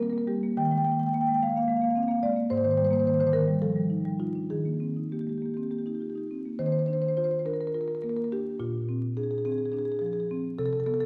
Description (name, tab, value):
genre	classical, contemporary piece for solo marimba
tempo	193-224 BPM (eighths)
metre	7/8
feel	rubato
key	Eb major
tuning	A4 = 440 Hz
part	marimba with medium mallets	solo	0.0-11.1 s	Ab2 to G5	-28 LUFS	equal	none
room	wet recital hall reverb, RT60 1.6 s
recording	heard from further back in the room, vinyl crackle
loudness	-28 LUFS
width	mono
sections	0.0-6.6 A section; 6.6-11.1 B section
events	none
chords	0.0 Eb6; 0.6 Bb5/Eb; 2.5 Abmaj9; 3.6 F9; 4.5 Eb6; 6.6 Ebsus2; 8.6 Bb9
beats	0.28 | 0.57 0.86 1.13 1.41 1.68 1.95 2.21 | 2.49 2.76 3.04 3.32 3.61 3.90 4.19 | 4.50 4.81 5.12 5.42 5.72 6.01 6.31 | 6.61 6.89 7.18 7.47 7.76 8.04 8.32 | 8.60 8.88 9.17 9.45 9.73 10.01 10.29 | 10.57 10.86